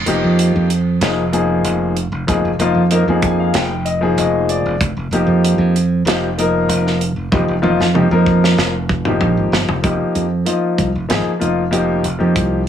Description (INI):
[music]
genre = electric jazz fusion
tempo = 95 BPM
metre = 4/4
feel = straight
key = F minor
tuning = A4 = 440 Hz
[part]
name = modern bright fingered electric bass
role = bass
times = 0.0-12.7 s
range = F1 to F2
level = -18 LUFS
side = right 2 dB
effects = none
[part]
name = warm grand piano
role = accompaniment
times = 0.1-12.6 s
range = F3 to Ab5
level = -17 LUFS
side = left 3 dB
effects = none
[part]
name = modern studio drum kit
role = drums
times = 0.1-12.5 s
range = hi-hat, kick drum, snare drum, toms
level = -21 LUFS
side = right 2 dB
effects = none
[sound]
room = light reverb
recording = none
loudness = -14 LUFS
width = side -9 dB against mid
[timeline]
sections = 0.0-9.8 A section; 9.8-12.7 B section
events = grand piano fill 2.9-4.8; drum fill 7.3-9.8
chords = 0.0 Fm9